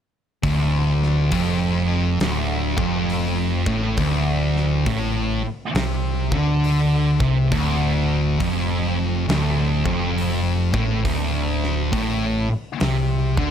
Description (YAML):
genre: stoner and doom metal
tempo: 68 BPM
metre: 4/4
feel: swing 64% on 8ths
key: D minor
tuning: A4 = 441 Hz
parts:
  - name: thick fuzz guitar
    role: riff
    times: 0.4-13.5 s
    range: D2 to D3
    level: -24 LUFS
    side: left 9 dB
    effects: distortion
  - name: thick fuzz guitar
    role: riff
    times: 0.4-13.5 s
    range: D2 to D3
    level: -22 LUFS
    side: right 6 dB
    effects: distortion
  - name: overdriven picked electric bass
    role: bass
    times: 0.4-13.5 s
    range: D1 to D2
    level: -25 LUFS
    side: equal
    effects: none
  - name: big rock drum kit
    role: drums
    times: 0.4-13.5 s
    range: hi-hat, kick drum, snare drum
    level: -28 LUFS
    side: left 1 dB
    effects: none
room: light reverb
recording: none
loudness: -18 LUFS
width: side -8 dB against mid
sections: 0.4-13.5 A section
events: none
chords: 0.4 Dm